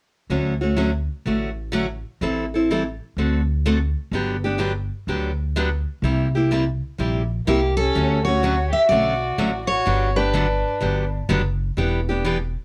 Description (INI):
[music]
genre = acoustic string swing (jazz manouche)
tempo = 126 BPM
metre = 4/4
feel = swing 65% on 8ths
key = D major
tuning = A4 = 440 Hz
[part]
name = picked steel-string acoustic guitar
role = accompaniment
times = 0.3-12.4 s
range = C3 to A4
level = -25 LUFS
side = equal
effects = none
[part]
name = upright bass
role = bass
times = 0.3-12.5 s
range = E1 to D2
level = -26 LUFS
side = equal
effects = none
[part]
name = picked steel-string acoustic guitar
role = melody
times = 7.5-11.1 s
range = G4 to E5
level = -24 LUFS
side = equal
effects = none
[part]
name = warm violin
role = second line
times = 7.5-11.1 s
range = Bb3 to G4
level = -28 LUFS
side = equal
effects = none
[sound]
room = light reverb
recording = worn, warbling old tape, cassette tape, warbly pitch drift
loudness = -22 LUFS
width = mono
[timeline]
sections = 0.3-7.9 A section; 7.9-12.6 B section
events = none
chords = 0.3 Dmaj7; 2.2 Am7; 3.2 D7; 4.1 Gmaj7; 6.0 C7; 7.9 Dmaj7; 9.9 Gmaj7; 11.8 Em7